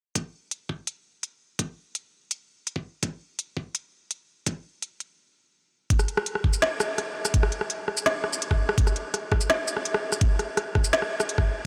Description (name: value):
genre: drum and bass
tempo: 167 BPM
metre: 4/4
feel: half-time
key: none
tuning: none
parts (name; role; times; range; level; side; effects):
- electronic kick drum; drums; 0.2-11.5 s; none; -26 LUFS; equal; high-pass filter on kick, high-pass filter on room
- organic electronic drum kit; drums; 0.2-11.5 s; hi-hat, rim click, shaker, snare drum; -28 LUFS; equal; none
room: wet huge ambient reverb, RT60 7.3 s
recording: dreamy mix soaked in reverb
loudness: -27 LUFS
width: mono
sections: 0.2-5.9 A section; 5.9-11.7 B section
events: stop 5.2-5.9; drop 5.9-11.7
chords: none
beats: | 0.15 0.51 0.87 1.23 | 1.59 1.95 2.31 2.67 | 3.03 3.39 3.75 4.11 | 4.47 4.83 5.18 5.54 | 5.90 6.26 6.62 6.98 | 7.34 7.70 8.06 8.42 | 8.78 9.14 9.50 9.86 | 10.21 10.57 10.93 11.29